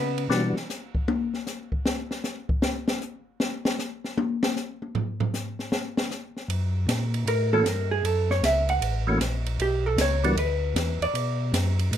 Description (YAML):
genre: soul jazz organ trio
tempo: 155 BPM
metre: 4/4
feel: swing 66% on 8ths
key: unclear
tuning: A4 = 439 Hz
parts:
  - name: vintage hollow-body jazz guitar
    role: accompaniment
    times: 0.0-0.2, 7.3-11.5 s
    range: B3 to F#5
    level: -26 LUFS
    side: right 2 dB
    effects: none
  - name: mellow tonewheel organ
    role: bass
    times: 0.0-0.5, 6.5-12.0 s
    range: A1 to C#3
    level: -26 LUFS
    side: equal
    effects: slow rotary speaker
  - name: open jazz drum kit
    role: drums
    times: 0.2-12.0 s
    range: hi-hat, kick drum, ride cymbal, snare drum, toms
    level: -28 LUFS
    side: left 1 dB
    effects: none
  - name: percussive tonewheel organ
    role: melody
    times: 0.3-0.6, 7.5-10.4 s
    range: E3 to F#4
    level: -25 LUFS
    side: left 1 dB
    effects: slow rotary speaker, overdrive, chorus vibrato
room: moderate club reverb, RT60 0.5 s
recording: faint mains hum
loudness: -24 LUFS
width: side -10 dB against mid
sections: 0.0-12.0 A section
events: hollow-body jazz guitar solo 0.0-12.0; drum solo 0.3-6.5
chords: 0.3 N.C.; 6.5 F#(#9); 9.6 Em7; 11.1 Bm7